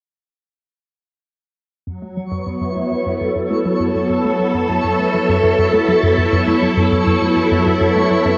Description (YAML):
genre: ambient, sequencer-driven space music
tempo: 101 BPM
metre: 4/4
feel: straight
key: F# minor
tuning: A4 = 439 Hz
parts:
  - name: phased string machine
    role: sustained chords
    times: 1.9-8.4 s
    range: F#3 to A4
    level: -18 LUFS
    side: equal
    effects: ensemble chorus, phaser, shimmer reverb
  - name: hollow square pluck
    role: riff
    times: 1.9-8.4 s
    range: F#2 to A3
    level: -24 LUFS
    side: equal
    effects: chorus, phaser, analog delay
  - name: twinkling granular texture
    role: texture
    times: 2.2-8.4 s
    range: C#5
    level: -26 LUFS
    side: equal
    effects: built-in reverb, shimmer reverb
room: wet concert hall reverb, RT60 1.9 s, digital ambience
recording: worn, warbling old tape, cassette tape, warbly pitch drift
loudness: -16 LUFS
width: mono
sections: 1.9-8.4 A section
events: fade-in on synth arpeggio sound 1.9-8.4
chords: 1.9 F#m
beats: | 1.87 2.47 3.06 3.65 | 4.25 4.84 5.44 6.03 | 6.62 7.22 7.81